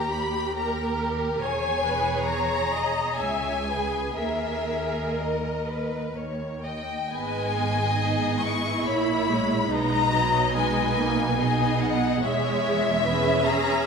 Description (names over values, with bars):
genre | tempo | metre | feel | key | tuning
classical, slow romantic movement for string orchestra | 59-73 BPM | 3/4 | rubato | G# minor | A4 = 440 Hz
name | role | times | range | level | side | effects
warm studio violin section | melody | 0.0-13.9 s | D#5 to C#6 | -27 LUFS | left 5 dB | none
rich studio violin section | second line | 0.0-13.9 s | G4 to F#5 | -30 LUFS | left 1 dB | none
rich studio viola section | accompaniment | 0.0-13.9 s | F#3 to E5 | -28 LUFS | right 3 dB | none
dark studio double bass section | bass | 0.0-13.9 s | E1 to D#2 | -32 LUFS | right 3 dB | none
rich studio cello section | bass | 0.0-13.9 s | C#2 to B2 | -32 LUFS | right 3 dB | none
room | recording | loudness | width
wet scoring stage reverb, RT60 1.8 s | minimal, uncompressed stereo recording | -22 LUFS | side -5 dB against mid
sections
0.0-7.1 A section; 7.1-13.9 B section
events
none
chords
0.0 D#; 1.4 C#m/E; 4.2 D#sus4; 7.1 G#m; 9.7 G#m/B; 12.2 E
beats
0.57 | 1.42 2.29 3.20 | 4.18 5.18 6.16 | 7.12 7.99 8.86 | 9.71 10.54 11.38 | 12.22 13.05